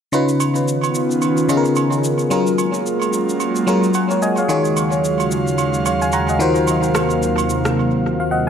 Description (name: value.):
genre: amapiano.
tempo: 110 BPM.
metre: 4/4.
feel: swing 58% on 16ths.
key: unclear.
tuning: A4 = 445 Hz.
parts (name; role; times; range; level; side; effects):
FM electric piano; accompaniment; 0.1-8.5 s; C#3 to A#5; -17 LUFS; left 2 dB; chorus, analog delay.
airy breathy pad; sustained chords; 0.1-8.5 s; D#2 to E#5; -21 LUFS; right 2 dB; chorus.
electronic shaker and rim click; drums; 0.1-7.8 s; none; -28 LUFS; left 1 dB; overdrive, analog delay.
agogo bells; percussion; 0.1-7.5 s; none; -26 LUFS; right 12 dB; analog delay.
room: moderate echo chamber reverb, RT60 1.9 s.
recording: echo-heavy mix.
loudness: -15 LUFS.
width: side -8 dB against mid.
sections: 0.1-8.5 A section.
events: FM electric piano fill 3.7-4.5; drums muted 7.8-8.5.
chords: 0.1 C#9; 2.3 F#maj9; 4.5 D#m11; 6.4 D#m69.